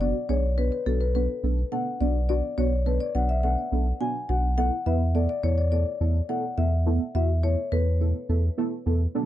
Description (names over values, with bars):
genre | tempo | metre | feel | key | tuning
pop | 105 BPM | 4/4 | straight | unclear | A4 = 440 Hz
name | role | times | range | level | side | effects
marimba with medium mallets | melody | 0.0-8.8 s | A4 to G#5 | -30 LUFS | left 4 dB | ping-pong delay
deep mellow chord stab | accompaniment | 0.0-9.3 s | B3 to B4 | -30 LUFS | right 3 dB | chorus, phaser
saturated sub bass | bass | 0.0-9.1 s | F#1 to E2 | -24 LUFS | equal | none
lush unison pad | sustained chords | 9.2-9.3 s | D3 to F#4 | -33 LUFS | right 1 dB | chorus, phaser
room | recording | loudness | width
little or no reverb | dark, warm production | -23 LUFS | side -12 dB against mid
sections
0.0-9.1 A section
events
none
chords
0.0 Bm; 4.6 Esus4